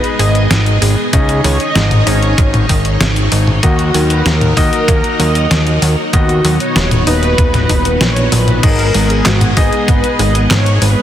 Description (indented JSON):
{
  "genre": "synthwave",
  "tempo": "96 BPM",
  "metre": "4/4",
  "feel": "straight",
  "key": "unclear",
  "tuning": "A4 = 438 Hz",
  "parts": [
    { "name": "mellow synth brass", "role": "melody", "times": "0.0-11.0 s", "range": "Gb4 to Eb5", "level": "-19 LUFS", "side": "equal", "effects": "chorus, digital delay" },
    { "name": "string machine, full ensemble", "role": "sustained chords", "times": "0.0-11.0 s", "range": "Ab3 to Eb5", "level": "-20 LUFS", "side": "equal", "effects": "ensemble chorus, sidechain pumping" },
    { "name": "wide unison pluck", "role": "arpeggios", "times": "0.0-11.0 s", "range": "Db3 to Eb4", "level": "-23 LUFS", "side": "right 3 dB", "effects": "none" },
    { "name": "warm electric grand piano", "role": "stabs", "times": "0.0-11.0 s", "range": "Bb3 to Eb5", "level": "-21 LUFS", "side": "left 2 dB", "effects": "digital delay" },
    { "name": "fat analog bass", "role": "bass", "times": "0.0-11.0 s", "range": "D#1 to Eb2", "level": "-14 LUFS", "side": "equal", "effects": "sidechain pumping" },
    { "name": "detuned 8-bit digital drum machine", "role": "drums", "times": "0.0-10.9 s", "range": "crash cymbal, handclaps, hi-hat, snare drum, toms", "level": "-17 LUFS", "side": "left 1 dB", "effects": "none" },
    { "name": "electronic kick drum", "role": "drums", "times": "1.1-10.0 s", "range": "none", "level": "-14 LUFS", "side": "equal", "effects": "none" }
  ],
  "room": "light reverb",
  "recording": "dense, heavily limited modern master",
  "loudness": "-10 LUFS",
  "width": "side -11 dB against mid",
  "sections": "0.0-11.0 A section",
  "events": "none",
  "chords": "0.0 Abm; 1.1 Dbsus2; 3.6 Ebm; 6.1 B/D#; 8.6 Abm"
}